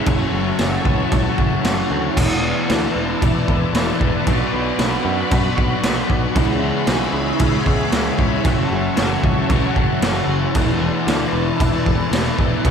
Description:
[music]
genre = rock, shoegaze and dream pop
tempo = 115 BPM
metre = 4/4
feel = straight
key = E mixolydian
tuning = A4 = 443 Hz
[part]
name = sweeping resonant pad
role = sustained chords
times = 0.0-12.7 s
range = E4 to B5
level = -25 LUFS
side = left 1 dB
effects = chorus
[part]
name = electric guitar through a small old amp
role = riff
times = 0.0-12.7 s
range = E2 to F#4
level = -24 LUFS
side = right 11 dB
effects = reverse reverb
[part]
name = thick fuzz guitar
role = riff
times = 0.0-12.7 s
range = E2 to C#4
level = -22 LUFS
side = left 11 dB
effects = distortion, ensemble chorus
[part]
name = picked electric bass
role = bass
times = 0.1-12.7 s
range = E1 to F#2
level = -24 LUFS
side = equal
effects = none
[part]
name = raw garage drum kit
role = drums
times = 0.1-12.7 s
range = crash cymbal, kick drum, snare drum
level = -20 LUFS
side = equal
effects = none
[sound]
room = moderate plate reverb, RT60 1.2 s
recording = dreamy mix soaked in reverb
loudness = -16 LUFS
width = side -7 dB against mid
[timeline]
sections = 0.0-2.2 A section; 2.2-12.7 A section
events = none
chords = 0.1 F#m7; 2.2 E7sus4; 4.3 Bm; 6.4 C#m7; 8.5 F#m7; 10.5 E7sus4

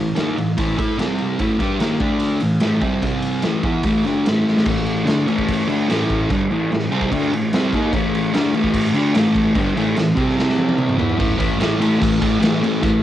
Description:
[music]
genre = garage rock duo or trio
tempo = 147 BPM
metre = 4/4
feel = straight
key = A minor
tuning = A4 = 435 Hz
[part]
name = fuzz guitar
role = riff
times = 0.0-13.0 s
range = G2 to A4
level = -17 LUFS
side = equal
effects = distortion, cassette tape
[part]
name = raw garage drum kit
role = drums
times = 0.2-12.9 s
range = crash cymbal, kick drum, ride cymbal, snare drum, toms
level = -22 LUFS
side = equal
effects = none
[sound]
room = moderate small room reverb, RT60 0.5 s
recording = home recording on cassette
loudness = -16 LUFS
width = side -12 dB against mid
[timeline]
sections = 0.0-4.7 A section; 4.7-11.2 B section; 11.2-13.0 C section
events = drum fill 4.5, 10.4-11.2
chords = 0.0 A5; 1.0 C5; 1.4 A5; 2.0 D5; 2.4 Am; 3.0 C5; 3.4 A5; 4.7 Am; 10.2 C5; 11.0 E5; 11.2 A5

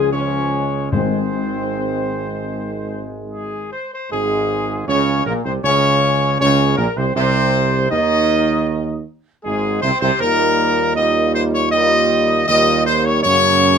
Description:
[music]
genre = classical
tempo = 78 BPM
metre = 4/4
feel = uneven beats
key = Db major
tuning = A4 = 441 Hz
[part]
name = mellow trumpet section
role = melody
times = 0.0-13.8 s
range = Ab4 to Eb5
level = -17 LUFS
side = left 1 dB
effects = none
[part]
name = bright trombone section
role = sustained chords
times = 0.0-13.8 s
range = Ab2 to Ab3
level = -24 LUFS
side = right 2 dB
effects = none
[part]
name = mellow French horn section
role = sustained chords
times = 0.0-13.8 s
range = Ab3 to F4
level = -24 LUFS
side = left 2 dB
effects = none
[part]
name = mellow tuba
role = bass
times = 0.0-13.8 s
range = Ab1 to Gb2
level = -21 LUFS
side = right 4 dB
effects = none
[part]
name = timpani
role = percussion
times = 0.9-2.1 s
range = Ab2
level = -23 LUFS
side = left 5 dB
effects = none
[sound]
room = light reverb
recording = minimal, uncompressed stereo recording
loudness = -15 LUFS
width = side -7 dB against mid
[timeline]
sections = 0.0-4.1 A section; 4.1-13.8 B section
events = none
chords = 0.0 Db; 0.9 Ab; 4.1 Db5/Ab; 7.2 Ab/C; 10.2 Ebadd9; 13.2 Gb

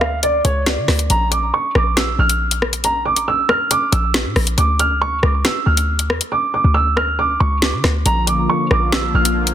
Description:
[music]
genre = hip hop, drill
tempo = 138 BPM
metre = 4/4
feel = half-time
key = unclear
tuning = A4 = 440 Hz
[part]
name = dark baby grand piano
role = melody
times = 0.0-9.5 s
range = C#5 to F6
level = -18 LUFS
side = right 2 dB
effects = low-pass filter, digital delay
[part]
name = short 808-style bass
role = bass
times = 0.0-9.5 s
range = Bb1 to D3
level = -18 LUFS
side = equal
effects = none
[part]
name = drill drum kit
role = drums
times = 0.0-9.5 s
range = hi-hat, rim click, snare drum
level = -19 LUFS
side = left 1 dB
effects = overdrive
[part]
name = sweeping resonant pad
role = sustained chords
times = 8.1-9.5 s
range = D3 to F4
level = -21 LUFS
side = left 2 dB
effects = chorus
[sound]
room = digital ambience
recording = dense, heavily limited modern master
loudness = -14 LUFS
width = side -10 dB against mid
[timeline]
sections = 0.0-1.1 A section; 1.1-9.5 B section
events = hi-hats muted 6.3-8.1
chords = 0.0 N.C.; 1.1 Bb5; 4.6 Dm; 8.1 Bb

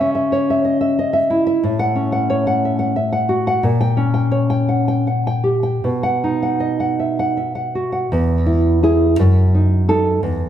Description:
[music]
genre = romantic piece for solo classical guitar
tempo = 51-62 BPM (dotted quarters)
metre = 6/8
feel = rubato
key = unclear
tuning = A4 = 440 Hz
[part]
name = nylon-string guitar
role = solo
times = 0.0-10.5 s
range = E2 to G5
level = -15 LUFS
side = equal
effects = none
[sound]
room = moderate scoring stage reverb, RT60 1.7 s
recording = dark, warm production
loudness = -15 LUFS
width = side -10 dB against mid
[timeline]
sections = 0.0-8.1 A section; 8.1-10.5 B section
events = none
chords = 0.0 C#m; 1.6 F#m/A; 3.6 A#m6; 5.8 B; 8.1 E; 9.2 D#dim/F#

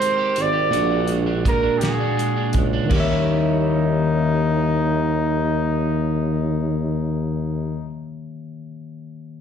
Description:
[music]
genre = slow six-eight R&B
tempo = 55 BPM (dotted quarters)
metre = 6/8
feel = straight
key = unclear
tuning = A4 = 440 Hz
[part]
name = warm flugelhorn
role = melody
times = 0.0-7.9 s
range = Eb4 to D5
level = -24 LUFS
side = right 1 dB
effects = slapback echo
[part]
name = electric guitar at the edge of break-up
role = second line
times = 0.0-7.9 s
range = Bb2 to Bb4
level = -27 LUFS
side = right 7 dB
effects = wide subtle chorus, slapback echo
[part]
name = tine electric piano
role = accompaniment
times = 0.0-9.4 s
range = Bb2 to Fb5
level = -25 LUFS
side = left 5 dB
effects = slapback echo
[part]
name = damped 70s drum kit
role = drums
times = 0.0-3.1 s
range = crash cymbal, hi-hat, kick drum, snare drum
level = -24 LUFS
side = right 1 dB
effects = none
[part]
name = warm tuba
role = bass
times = 0.4-7.8 s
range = Ab1 to Eb2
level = -22 LUFS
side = equal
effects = none
[sound]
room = light reverb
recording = live gig heard through the venue's PA, club reverb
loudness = -18 LUFS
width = side -8 dB against mid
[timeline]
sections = 0.0-2.9 A section; 2.9-7.3 B section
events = none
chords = 0.0 Abmaj9; 0.7 Bb7alt; 2.9 Eb7b9

